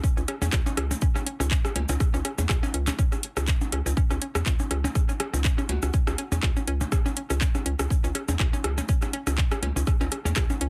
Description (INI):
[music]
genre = minimal techno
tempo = 122 BPM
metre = 4/4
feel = swing 55% on 16ths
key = C# minor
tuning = A4 = 442 Hz
[part]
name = hollow square pluck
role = riff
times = 0.0-10.6 s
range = C#4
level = -38 LUFS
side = equal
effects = chorus, sidechain pumping, tape echo
[part]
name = electronic kick drum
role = drums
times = 0.0-10.5 s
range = none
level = -26 LUFS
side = equal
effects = none
[part]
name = cabasa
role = percussion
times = 0.0-10.6 s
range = none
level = -40 LUFS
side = equal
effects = none
[part]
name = hollow knocking FM bass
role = bass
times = 0.2-10.7 s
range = C#2 to E2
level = -30 LUFS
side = equal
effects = sidechain pumping
[part]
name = electronic percussion blips and rim click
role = percussion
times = 0.2-10.6 s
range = none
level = -34 LUFS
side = equal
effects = overdrive, soft clipping on snare, tape echo
[part]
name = house drum kit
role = drums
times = 0.3-10.7 s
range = handclaps, hi-hat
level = -32 LUFS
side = equal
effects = none
[part]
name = breathy flute-like synth lead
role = melody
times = 5.7-5.9 s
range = F#4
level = -44 LUFS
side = equal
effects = chorus, tape echo
[sound]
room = little or no reverb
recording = dense, heavily limited modern master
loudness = -26 LUFS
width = mono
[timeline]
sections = 0.0-10.7 A section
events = none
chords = 0.0 C#5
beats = | 0.04 0.53 1.02 1.51 | 2.00 2.49 2.99 3.48 | 3.97 4.46 4.95 5.45 | 5.94 6.43 6.92 7.41 | 7.90 8.40 8.89 9.38 | 9.87 10.36